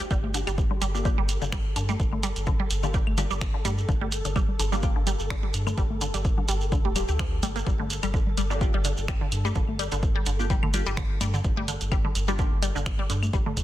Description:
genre	minimal techno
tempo	127 BPM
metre	4/4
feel	swing 54% on 16ths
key	G minor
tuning	A4 = 439 Hz
part	resonant blip pluck	riff	0.0-13.5 s	D3 to G4	-32 LUFS	equal	phaser, sidechain pumping, digital delay
part	punchy analog drum machine	drums	0.0-13.6 s	finger snaps, hi-hat	-34 LUFS	right 2 dB	soft clipping on snare
part	shekere	percussion	0.0-13.6 s	none	-37 LUFS	right 4 dB	none
part	flickering grainy texture	texture	0.0-13.6 s	G4 to A4	-39 LUFS	equal	built-in reverb, sidechain pumping
part	round analog bass	bass	0.1-13.6 s	D1 to G2	-30 LUFS	equal	sidechain pumping
part	electronic kick drum	drums	0.1-13.6 s	none	-27 LUFS	equal	none
part	congas and claves	percussion	0.2-13.5 s	none	-36 LUFS	left 3 dB	digital delay
part	filtered dub chord stab	stabs	0.9-12.5 s	Bb3 to G4	-36 LUFS	left 2 dB	phaser, wide subtle chorus, digital delay
room	digital ambience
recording	dense, heavily limited modern master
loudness	-23 LUFS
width	side -14 dB against mid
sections	0.0-13.6 A section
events	none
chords	0.0 G5

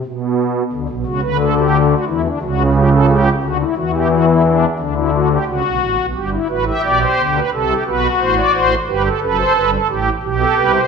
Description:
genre	classical, baroque-style 3-part fugue for pipe organ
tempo	88 BPM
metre	4/4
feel	straight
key	G major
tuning	A4 = 437 Hz
part	pipe organ, strings celeste	solo	0.0-10.9 s	F#1 to E5	-14 LUFS	equal	none
room	wet recital hall reverb, RT60 1.6 s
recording	none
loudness	-14 LUFS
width	side -6 dB against mid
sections	0.0-6.2 A section; 6.2-10.9 B section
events	none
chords	0.0 N.C.; 0.7 D; 2.1 C#dim; 3.4 D; 6.2 G; 7.5 F#dim; 8.9 G; 10.2 G/B

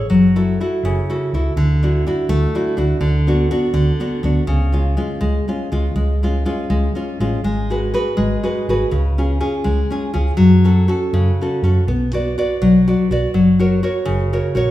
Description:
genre	italian folk, Italian serenade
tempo	82 BPM (dotted quarters)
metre	6/8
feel	rubato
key	F# minor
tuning	A4 = 440 Hz
part	nylon-string guitar	accompaniment	0.0-14.7 s	C#3 to D5	-17 LUFS	left 1 dB	none
part	hollow-body short-scale fingered electric bass	bass	0.1-14.7 s	F#1 to F#2	-18 LUFS	equal	none
room	wet recital hall reverb, RT60 1.5 s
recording	minimal, uncompressed stereo recording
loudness	-15 LUFS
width	side -14 dB against mid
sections	0.1-11.9 A section; 11.9-14.7 B section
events	none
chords	0.1 F#m7; 1.6 Dadd9; 3.0 Bm/D; 4.5 C#; 7.4 G#m7; 8.9 C#; 10.4 F#m; 11.9 Bm; 13.3 F#

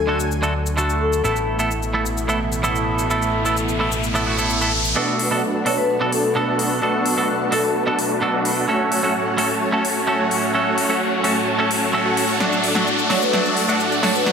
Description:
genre	EDM, festival progressive house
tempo	129 BPM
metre	4/4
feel	straight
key	unclear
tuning	A4 = 440 Hz
part	lush unison pad	sustained chords	0.0-14.3 s	A2 to G#5	-25 LUFS	equal	chorus
part	fat analog bass	bass	0.0-4.9 s	A1 to D2	-25 LUFS	left 1 dB	none
part	vibraphone with medium mallets	melody	0.1-1.3, 5.7-8.1, 13.1-14.2 s	F#4 to C#5	-25 LUFS	left 3 dB	tape echo
part	clean electric guitar	accompaniment	0.1-14.3 s	A2 to A4	-22 LUFS	right 2 dB	spring reverb, tape echo
part	big-room dance drum kit	drums	0.2-14.3 s	hi-hat, shaker, snare drum	-27 LUFS	left 2 dB	overdrive, studio reverb
part	riser	sound effects	2.6-14.3 s	none	-27 LUFS	equal	none
part	supersaw chords	riff	5.0-14.3 s	A3 to A5	-22 LUFS	equal	low-pass filter, tape echo
room	moderate digital room reverb, RT60 1.0 s, digital ambience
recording	high-pass filter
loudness	-17 LUFS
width	side -6 dB against mid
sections	0.0-5.0 A section; 5.0-14.3 B section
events	filter sweep on analog synth pad 0.0-5.0; riser 2.6-5.0, 5.0-14.3; build-up 5.0-14.3; filter sweep on supersaw synth 5.0-14.3; drum fill 12.4-14.3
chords	0.0 D; 1.2 Asus2; 5.0 Bm7; 8.7 F#m; 12.4 D

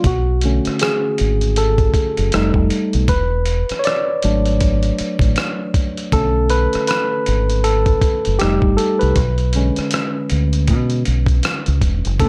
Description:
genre	R&B, neo-soul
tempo	79 BPM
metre	4/4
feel	swing 59% on 16ths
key	B dorian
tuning	A4 = 440 Hz
part	barky tine electric piano	accompaniment	0.0-12.3 s	D3 to D5	-21 LUFS	equal	overdrive
part	dusty soul sampler-style drum kit	drums	0.0-12.3 s	hi-hat, kick drum, rim click	-23 LUFS	equal	none
part	deep dub fingered electric bass	bass	0.1-12.3 s	E1 to B2	-20 LUFS	equal	none
part	warm studio string section	sustained chords	12.2-12.3 s	D3 to B3	-26 LUFS	equal	none
room	light reverb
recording	dark, warm production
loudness	-17 LUFS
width	mono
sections	0.0-12.2 A section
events	tine electric piano solo 0.0-12.2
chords	0.0 Bm9; 2.3 F9; 3.1 E7sus4; 6.1 Bm9; 8.4 F9; 9.2 Bm69

